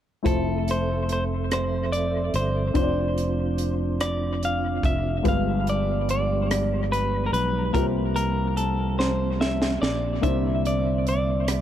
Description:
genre	slow gospel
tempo	48 BPM (dotted quarters)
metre	6/8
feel	straight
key	F major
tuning	A4 = 440 Hz
part	warm baby grand piano	accompaniment	0.2-11.6 s	G2 to D5	-30 LUFS	left 4 dB	none
part	mellow tonewheel organ	sustained chords	0.2-11.6 s	D3 to E5	-31 LUFS	right 4 dB	slow rotary speaker, chorus vibrato
part	clean electric guitar	melody	0.3-11.6 s	A4 to F5	-28 LUFS	left 1 dB	dub echo
part	fingered electric bass	bass	0.3-11.6 s	F1 to C2	-26 LUFS	equal	none
part	crisp fusion drum kit	drums	0.3-11.6 s	hi-hat, kick drum, rim click, snare drum	-28 LUFS	right 1 dB	dub echo
room	moderate spring reverb, RT60 2.6 s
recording	echo-heavy mix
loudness	-22 LUFS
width	side -10 dB against mid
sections	0.3-11.6 A section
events	drum fill 9.0-10.2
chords	0.3 Fmaj7; 2.8 Dm7/F; 5.3 G7b9; 7.7 C7sus4; 10.2 C9

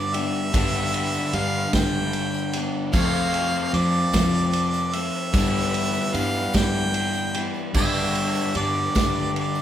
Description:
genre	folk rock and heartland rock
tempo	50 BPM (dotted quarters)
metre	6/8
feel	straight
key	G mixolydian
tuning	A4 = 440 Hz
part	clear harmonica	melody	0.0-9.6 s	D5 to G5	-26 LUFS	right 1 dB	none
part	picked steel-string acoustic guitar	accompaniment	0.0-9.6 s	F2 to G4	-29 LUFS	left 5 dB	none
part	crunchy overdriven guitar	riff	0.0-9.6 s	G2 to A4	-28 LUFS	equal	none
part	fingered electric bass	bass	0.0-9.6 s	F2 to G2	-28 LUFS	equal	none
part	vintage drum kit	drums	0.1-9.5 s	crash cymbal, kick drum, ride cymbal, snare drum	-26 LUFS	right 1 dB	none
part	tambourine	percussion	0.3-9.6 s	none	-42 LUFS	right 6 dB	none
room	moderate large studio reverb, RT60 1.2 s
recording	band playing live in one room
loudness	-20 LUFS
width	side -10 dB against mid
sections	0.0-9.6 A section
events	none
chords	0.0 G; 2.9 F; 5.3 Em7/G; 7.8 G

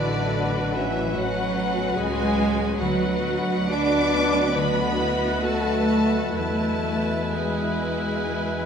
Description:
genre	classical, slow romantic movement for symphony orchestra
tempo	61-74 BPM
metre	4/4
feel	rubato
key	unclear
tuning	A4 = 439 Hz
part	rich chamber violin section	melody	0.0-8.7 s	D5 to D6	-31 LUFS	left 3 dB	none
part	dark clarinet	second line	0.0-8.7 s	D4 to D5	-32 LUFS	left 2 dB	none
part	mellow large flute ensemble	second line	0.0-8.7 s	E5 to F#5	-34 LUFS	left 2 dB	none
part	rich chamber violin section	second line	0.0-8.7 s	B3 to F#4	-34 LUFS	left 3 dB	none
part	warm oboe	second line	0.0-8.7 s	B4	-35 LUFS	right 2 dB	none
part	mellow bassoon	accompaniment	0.0-8.7 s	B2	-31 LUFS	right 1 dB	none
part	rich chamber viola section	accompaniment	0.0-8.7 s	E4 to B4	-32 LUFS	equal	none
part	warm French horn section	sustained chords	0.0-8.7 s	D3 to D4	-30 LUFS	left 3 dB	none
part	concert harp	arpeggios	0.0-8.7 s	A2 to B4	-32 LUFS	left 6 dB	none
part	clear chamber double bass section	bass	0.0-8.7 s	A1 to E2	-31 LUFS	right 3 dB	none
part	rich chamber cello section	bass	0.0-8.7 s	D3 to D4	-27 LUFS	right 3 dB	none
part	timpani	percussion	0.0-0.7 s	none	barely audible	none	none
room	wet recital hall reverb, RT60 1.6 s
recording	minimal, uncompressed stereo recording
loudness	-21 LUFS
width	side -7 dB against mid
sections	0.0-8.7 A section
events	none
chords	0.0 Bm7/A; 2.8 Bm/D; 6.4 E

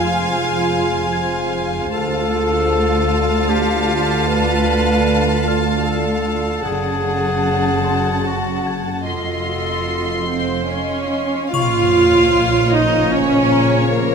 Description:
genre	cinematic, suspense film score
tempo	76 BPM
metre	3/4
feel	straight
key	unclear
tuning	A4 = 440 Hz
part	warm chamber violin section	melody	0.0-14.1 s	Db5 to C6	-25 LUFS	left 2 dB	none
part	clear clarinet	second line	0.0-11.1 s	F4 to Cb5	-22 LUFS	left 2 dB	none
part	warm chamber violin section	second line	0.0-14.1 s	Bb4 to Gb5	-24 LUFS	left 2 dB	none
part	warm chamber viola section	accompaniment	0.0-14.1 s	Db3 to F4	-20 LUFS	right 3 dB	none
part	deep dark ambient pad	sustained chords	0.0-14.1 s	Gb4 to C6	-27 LUFS	left 2 dB	chorus, built-in reverb
part	dark chamber cello section	bass	0.0-14.1 s	D2 to Bb2	-24 LUFS	right 2 dB	none
part	warm symphonic double bass section	bass	0.0-14.1 s	F1 to D2	-24 LUFS	right 3 dB	none
part	small celesta	texture	0.0-14.1 s	Db5 to Ab6	-30 LUFS	left 5 dB	none
part	dark French horn section	sustained chords	11.5-14.1 s	Db3 to F3	-24 LUFS	left 6 dB	none
part	triangle	percussion	11.5-13.1 s	none	-33 LUFS	left 5 dB	none
part	sub drop	sound effects	11.5-13.9 s	none	-26 LUFS	left 3 dB	none
room	wet scoring stage reverb, RT60 1.9 s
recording	none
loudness	-15 LUFS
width	side -6 dB against mid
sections	0.0-11.5 A section; 11.5-14.1 B section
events	impact 11.5-13.9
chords	0.0 Fm; 1.9 Dm; 6.6 Gbm; 9.1 F7; 11.5 Bbm

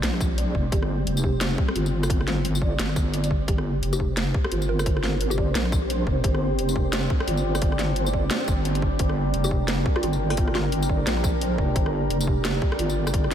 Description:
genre	half-time drum and bass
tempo	174 BPM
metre	4/4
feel	swing 59% on 16ths, half-time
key	G minor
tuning	A4 = 442 Hz
part	felt-muted upright piano	arpeggios	0.0-13.3 s	G3 to D5	-33 LUFS	right 3 dB	ensemble chorus, diffuse ambient delay
part	deep soft wobble bass	bass	0.0-13.3 s	F1 to Bb1	-25 LUFS	equal	chorus
part	drum and bass drum kit	drums	0.0-13.3 s	hi-hat, rim click, snare drum, tambourine	-30 LUFS	equal	overdrive, small room ambience
part	flickering grainy texture	texture	0.0-13.3 s	G3 to C5	-33 LUFS	equal	built-in reverb, analog chorus
part	electronic kick drum	drums	0.2-13.2 s	none	-24 LUFS	equal	overdrive, small room ambience
part	deep dark ambient pad	sustained chords	4.5-13.3 s	G3 to D5	-30 LUFS	right 1 dB	chorus, built-in reverb, vintage 12-bit sampler grit, sidechain pumping
part	mallet-like synth pluck	melody	3.9-5.8, 9.4-10.8 s	F4 to Bb4	-35 LUFS	left 1 dB	none
room	light reverb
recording	none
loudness	-21 LUFS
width	side -9 dB against mid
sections	0.0-13.3 A section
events	none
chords	0.0 Gm

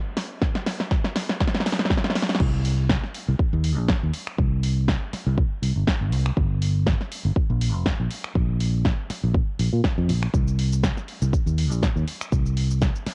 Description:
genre	nu-disco, nu disco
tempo	121 BPM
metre	4/4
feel	swing 55% on 16ths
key	C minor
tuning	A4 = 441 Hz
part	house drum kit	drums	0.2-13.1 s	crash cymbal, finger snaps, hi-hat, shaker, snare drum	-30 LUFS	equal	cassette tape
part	electronic kick drum	drums	0.4-12.9 s	none	-26 LUFS	equal	cassette tape
part	fingered electric bass	bass	2.4-13.1 s	F1 to Bb2	-24 LUFS	equal	tube saturation
room	light reverb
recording	home recording on cassette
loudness	-24 LUFS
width	mono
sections	0.0-2.4 A section; 2.4-13.1 B section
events	build-up 0.0-2.4; drum fill 0.0-2.4; drop 2.4-13.1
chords	none

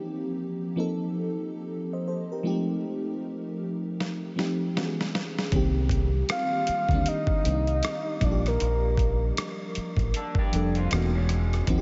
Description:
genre	R&B, neo-soul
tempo	78 BPM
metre	4/4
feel	swing 61% on 16ths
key	C dorian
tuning	A4 = 441 Hz
part	FM electric piano with soft pad layer	accompaniment	0.0-11.8 s	Eb3 to Eb5	-32 LUFS	equal	chorus, tremolo
part	dusty soul sampler-style drum kit	drums	4.0-11.8 s	hi-hat, kick drum, rim click, snare drum	-32 LUFS	equal	none
part	deep dub fingered electric bass	bass	5.5-11.8 s	E1 to Eb2	-28 LUFS	equal	none
part	soft octave-layered synth lead	melody	6.3-9.2 s	Bb4 to F5	-33 LUFS	equal	chorus, delay
part	electric guitar through a small old amp	second line	10.2-11.7 s	G#3 to A4	-37 LUFS	equal	subtle chorus
room	moderate huge ambient reverb, RT60 7.5 s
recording	dreamy mix soaked in reverb, nothing above 7.8 kHz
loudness	-27 LUFS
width	mono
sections	0.0-11.8 A section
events	drum fill 4.0-5.5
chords	0.0 Eb69; 4.8 Dbm7; 5.5 Cm7; 8.2 Bb6; 10.9 E69

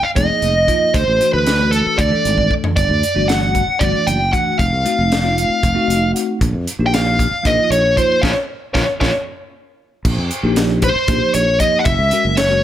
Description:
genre	electric jazz fusion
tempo	231 BPM (eighths)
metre	7/8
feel	straight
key	unclear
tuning	A4 = 440 Hz
part	smooth overdriven lead guitar	melody	0.0-12.6 s	A4 to G5	-17 LUFS	right 1 dB	slapback echo
part	breathy concert flute	second line	0.0-12.6 s	A4 to G5	-24 LUFS	left 3 dB	none
part	sustaining fretless electric bass	bass	0.0-12.6 s	F1 to F2	-19 LUFS	equal	none
part	bell-like tine electric piano	accompaniment	0.2-12.6 s	E3 to Gb5	-22 LUFS	left 1 dB	medium stereo tremolo
part	crisp fusion drum kit	drums	0.2-12.5 s	crash cymbal, hi-hat, kick drum, snare drum, toms	-21 LUFS	equal	none
room	light reverb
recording	none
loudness	-13 LUFS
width	side -11 dB against mid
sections	0.0-10.0 A section; 10.0-12.6 A section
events	drum fill 2.4-2.8, 8.5-10.0; tine electric piano fill 5.6-6.4; band accent 8.2-10.0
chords	0.0 Fm7; 0.9 Dadd9; 2.8 Gsus2; 4.6 F7b9; 6.4 Bbm6; 10.0 Bbsus2; 11.9 Gb7

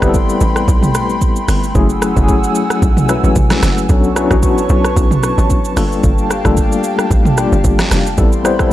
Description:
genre	amapiano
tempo	112 BPM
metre	4/4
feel	swing 55% on 16ths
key	B minor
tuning	A4 = 440 Hz
part	tine electric piano	accompaniment	0.0-8.7 s	F#3 to C5	-16 LUFS	left 3 dB	medium tremolo
part	airy breathy pad	sustained chords	0.0-8.7 s	A3 to E6	-21 LUFS	equal	chorus, sidechain pumping
part	tight log drum bass	bass	0.0-8.7 s	F1 to B1	-16 LUFS	equal	none
part	deep house drum kit	drums	0.0-8.7 s	hi-hat, kick drum, rim click, shaker, snare drum, toms	-15 LUFS	right 1 dB	none
room	digital ambience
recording	dark, warm production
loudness	-11 LUFS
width	side -14 dB against mid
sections	0.0-8.7 A section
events	none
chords	0.0 Am9; 1.8 F#m9; 3.9 Bm9; 5.8 Gm9; 8.2 Am9

